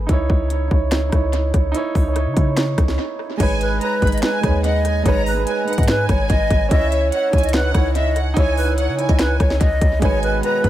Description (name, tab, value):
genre	hip hop, trap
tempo	145 BPM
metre	4/4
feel	half-time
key	G# minor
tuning	A4 = 440 Hz
part	dark baby grand piano	accompaniment	0.0-10.7 s	G#3 to C#5	-23 LUFS	right 4 dB	tape echo
part	clean 808-style bass	bass	0.0-10.7 s	G#1 to C#3	-20 LUFS	equal	none
part	trap drum kit	drums	0.1-10.7 s	crash cymbal, finger snaps, hi-hat, kick drum, rim click, snare drum	-20 LUFS	equal	tape echo
part	breathy hollow jazz flute	melody	3.4-10.7 s	B4 to D#5	-22 LUFS	left 1 dB	tape echo
part	warm studio violin section	second line	3.4-10.7 s	E5 to B5	-28 LUFS	right 1 dB	tape echo
part	pedal harmonium	sustained chords	10.0-10.7 s	B2 to B3	-27 LUFS	left 2 dB	stereo widening
room	light reverb, small room ambience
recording	echo-heavy mix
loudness	-16 LUFS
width	side -13 dB against mid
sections	0.0-3.4 A section; 3.4-10.7 B section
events	break 0.0-3.4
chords	0.1 C#madd9; 3.4 G#m; 6.7 C#madd9; 10.0 G#m